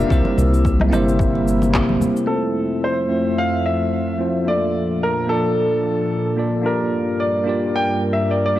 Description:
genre	sunset chillout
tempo	110 BPM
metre	4/4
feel	swing 55% on 16ths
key	F major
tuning	A4 = 442 Hz
part	warm grand piano	melody	0.0-8.6 s	A4 to G5	-23 LUFS	equal	vintage 12-bit sampler grit, digital delay
part	bell-like tine electric piano	accompaniment	0.0-8.6 s	A3 to D5	-21 LUFS	equal	auto-pan, low-pass filter, ping-pong delay
part	airy breathy pad	sustained chords	0.0-8.6 s	F2 to E5	-23 LUFS	equal	chorus
part	warm sub bass	bass	0.0-2.0 s	G1 to C2	-19 LUFS	equal	none
part	electronic cabasa, woodblock and handclaps	drums	0.0-2.3 s	none	-26 LUFS	equal	overdrive, studio reverb
part	electronic kick drum	drums	0.1-1.9 s	none	-22 LUFS	equal	overdrive, studio reverb
part	congas	percussion	0.2-2.1 s	none	-25 LUFS	left 2 dB	none
room	moderate lush hall reverb, RT60 1.6 s, digital ambience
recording	worn, warbling old tape, cassette tape, warbly pitch drift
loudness	-17 LUFS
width	side -14 dB against mid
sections	0.0-2.3 A section; 2.3-8.6 B section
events	filter sweep on tine electric piano 2.3-8.6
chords	0.1 C7; 2.3 Fmaj7; 4.5 Bbmaj7; 6.7 Gm7

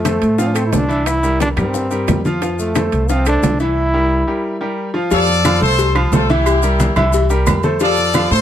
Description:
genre	latin, salsa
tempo	178 BPM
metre	4/4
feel	straight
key	F major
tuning	A4 = 440 Hz
part	bright trombone	melody	0.0-4.7 s	A3 to E4	-19 LUFS	equal	none
part	bright upright piano	accompaniment	0.0-8.4 s	E3 to F5	-20 LUFS	equal	none
part	upright bass	bass	0.0-8.4 s	C2 to A2	-18 LUFS	equal	none
part	bongos and cowbell	percussion	0.1-8.3 s	none	-24 LUFS	left 9 dB	none
part	claves	percussion	0.1-8.3 s	none	-27 LUFS	left 6 dB	none
part	congas	percussion	0.1-8.3 s	none	-21 LUFS	left 1 dB	none
part	maracas	percussion	0.1-8.4 s	none	-32 LUFS	left 8 dB	none
part	timbales and agogo bells	percussion	0.1-8.3 s	none	-24 LUFS	right 8 dB	none
part	bright horn section	melody	5.1-8.4 s	E4 to D5	-17 LUFS	left 3 dB	none
room	little or no reverb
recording	close, detailed microphones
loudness	-13 LUFS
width	side -10 dB against mid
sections	0.0-5.1 A section; 5.1-8.4 B section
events	none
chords	0.0 F; 1.1 C7; 2.4 F; 3.8 C7; 5.1 F; 6.5 C7; 7.8 F

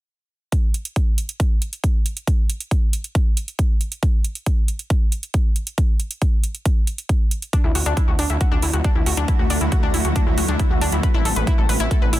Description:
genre	uplifting trance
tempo	137 BPM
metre	4/4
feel	straight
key	unclear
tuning	A4 = 440 Hz
part	electronic hi-hat	drums	0.5-12.2 s	none	-28 LUFS	right 4 dB	none
part	electronic kick drum	drums	0.5-12.0 s	none	-18 LUFS	equal	none
part	shimmering ambient pad	sustained chords	8.6-12.2 s	B2 to A4	-26 LUFS	equal	chorus, built-in reverb, sidechain pumping
part	analog pluck	arpeggios	7.5-12.2 s	D4 to B4	-25 LUFS	left 4 dB	chorus, sidechain pumping, ping-pong delay
part	gritty driven synth bass	bass	7.6-12.2 s	A1 to D2	-22 LUFS	equal	sidechain pumping
room	digital ambience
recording	dense, heavily limited modern master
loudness	-18 LUFS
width	side -15 dB against mid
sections	0.5-12.2 A section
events	none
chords	0.5 N.C.; 7.5 Dadd9; 11.0 Asus2

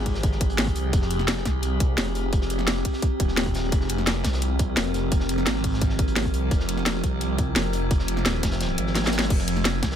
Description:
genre	dark technical drum and bass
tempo	172 BPM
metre	4/4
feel	straight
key	F minor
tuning	A4 = 439 Hz
part	metallic inharmonic drone	sustained chords	0.0-10.0 s	F3 to Bb4	-28 LUFS	equal	chorus, built-in reverb, sidechain pumping
part	phased detuned saw bass	bass	0.0-10.0 s	Eb1 to C2	-26 LUFS	equal	phaser, overdrive, sidechain pumping
part	crunchy breakbeat drum kit	drums	0.1-10.0 s	hi-hat, snare drum	-36 LUFS	equal	high-pass filter on hats, high-pass filter on snare, high-pass filter on room
part	drum and bass drum kit	drums	0.1-9.9 s	crash cymbal, hi-hat, snare drum	-26 LUFS	equal	overdrive
part	electronic kick drum	drums	0.1-9.9 s	none	-24 LUFS	equal	overdrive
room	little or no reverb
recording	none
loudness	-21 LUFS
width	side -9 dB against mid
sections	0.0-10.0 A section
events	kick drops out 8.6-9.3; drum fill 9.0-9.3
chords	0.0 Fmadd9

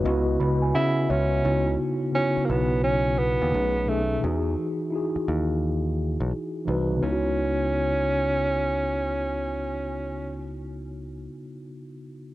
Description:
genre	lo-fi hip hop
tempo	86 BPM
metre	4/4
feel	swing 64% on 16ths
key	C# minor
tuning	A4 = 438 Hz
part	mellow tine electric piano	accompaniment	0.0-12.3 s	B2 to B5	-27 LUFS	equal	medium stereo tremolo, low-pass filter
part	picked electric bass	bass	0.1-11.3 s	B1 to C#3	-28 LUFS	equal	none
part	breathy tenor saxophone	melody	0.7-10.6 s	A3 to E4	-26 LUFS	right 1 dB	low-pass filter
room	light reverb, studio reverb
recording	cassette tape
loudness	-22 LUFS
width	side -16 dB against mid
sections	0.0-1.4 A section; 1.4-7.0 B section; 7.0-9.8 C section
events	tine electric piano fill 0.0-1.4; break 4.2-7.0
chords	0.0 C#m11; 3.5 B13; 4.2 Emaj9; 7.0 C#m11

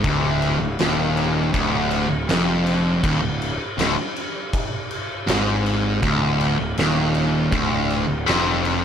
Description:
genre	stoner and doom metal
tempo	80 BPM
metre	4/4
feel	straight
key	unclear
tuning	A4 = 436 Hz
part	fuzz guitar	riff	0.0-8.8 s	D2 to G#2	-20 LUFS	equal	distortion
part	fuzz picked electric bass	bass	0.0-8.8 s	D1 to G#1	-27 LUFS	equal	overdrive
part	oversized low-tuned drum kit	drums	0.0-8.8 s	crash cymbal, kick drum, snare drum	-25 LUFS	equal	none
room	small room ambience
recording	none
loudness	-18 LUFS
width	side -8 dB against mid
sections	0.0-8.8 A section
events	none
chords	0.0 Dm

